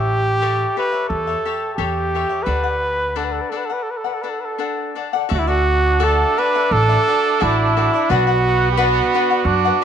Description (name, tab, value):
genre	mexican folk, mariachi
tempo	86 BPM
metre	4/4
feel	rubato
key	D major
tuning	A4 = 439 Hz
part	warm trumpet	melody	0.0-9.8 s	E4 to B4	-19 LUFS	right 1 dB	none
part	cavaquinho	accompaniment	0.0-9.8 s	D4 to F#5	-24 LUFS	left 10 dB	none
part	upright bass	bass	0.0-9.7 s	A1 to F#2	-21 LUFS	right 1 dB	none
part	clear trumpet	second line	5.3-9.8 s	B3 to D4	-21 LUFS	right 11 dB	none
room	moderate spring reverb, RT60 2.8 s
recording	1960s-style stereo with parts hard left and right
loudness	-16 LUFS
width	side -8 dB against mid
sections	0.0-5.3 A section; 5.3-9.8 A section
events	break 3.9-5.3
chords	0.0 A7; 2.5 D; 5.3 Dadd9; 8.1 Bm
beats	0.43 1.11 1.80 | 2.48 3.18 3.88 4.60 | 5.32 6.02 6.72 7.42 | 8.11 8.79 9.47